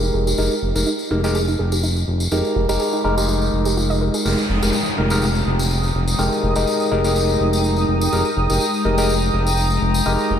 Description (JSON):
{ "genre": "deep house", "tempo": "124 BPM", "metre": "4/4", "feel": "swing 54% on 16ths", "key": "F minor", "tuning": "A4 = 440 Hz", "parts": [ { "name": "soft round pluck", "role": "arpeggios", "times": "0.0-4.2 s", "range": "Eb4 to Eb5", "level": "-27 LUFS", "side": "right 3 dB", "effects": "chorus, tape echo" }, { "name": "overdriven tine electric piano", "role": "stabs", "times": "0.0-10.4 s", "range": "Ab3 to Bb4", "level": "-21 LUFS", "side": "equal", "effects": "phaser, tape echo" }, { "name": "smooth gliding synth bass", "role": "bass", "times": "0.0-10.4 s", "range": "F1", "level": "-20 LUFS", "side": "equal", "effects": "none" }, { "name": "tambourine", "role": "percussion", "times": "0.0-10.3 s", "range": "none", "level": "-27 LUFS", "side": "left 2 dB", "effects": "none" }, { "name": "warm analog pad", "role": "sustained chords", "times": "4.3-10.4 s", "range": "Ab3 to Eb6", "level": "-23 LUFS", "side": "left 2 dB", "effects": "chorus, vintage 12-bit sampler grit" }, { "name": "downlifter", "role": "sound effects", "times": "4.3-8.1 s", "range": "none", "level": "-28 LUFS", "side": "equal", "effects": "none" } ], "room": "moderate church reverb, RT60 3.2 s", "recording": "dreamy mix soaked in reverb", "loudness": "-16 LUFS", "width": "side -8 dB against mid", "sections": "0.0-4.3 A section; 4.3-10.4 B section", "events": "filter sweep on synth arpeggio sound 0.0-4.3; drop 4.3-10.4", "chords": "0.0 Fm11" }